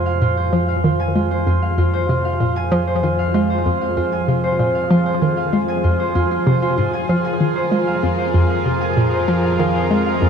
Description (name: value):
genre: ambient, sequencer-driven space music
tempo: 96 BPM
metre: 4/4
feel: straight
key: F minor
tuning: A4 = 441 Hz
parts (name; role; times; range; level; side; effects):
- lush unison pad; sustained chords; 0.0-10.3 s; F3 to C5; -24 LUFS; equal; chorus
- Celtic harp; arpeggios; 0.0-10.3 s; F4 to Ab5; -20 LUFS; right 1 dB; auto-pan, ping-pong delay
- hollow square pluck; riff; 0.0-10.3 s; F2 to Ab3; -19 LUFS; equal; chorus, ping-pong delay
- analog drone; bass; 0.0-10.3 s; F2; -24 LUFS; left 1 dB; chorus, tube saturation
room: wet cathedral reverb, RT60 5.4 s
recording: in a vast, echoing space, cassette tape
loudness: -16 LUFS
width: side -7 dB against mid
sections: 0.0-10.3 A section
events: fade-in on analog synth pad 0.0-10.3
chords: 0.0 Fm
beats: 0.22 0.84 1.47 | 2.09 2.72 3.34 3.97 | 4.59 5.22 5.84 6.47 | 7.09 7.72 8.34 8.97 | 9.59 10.22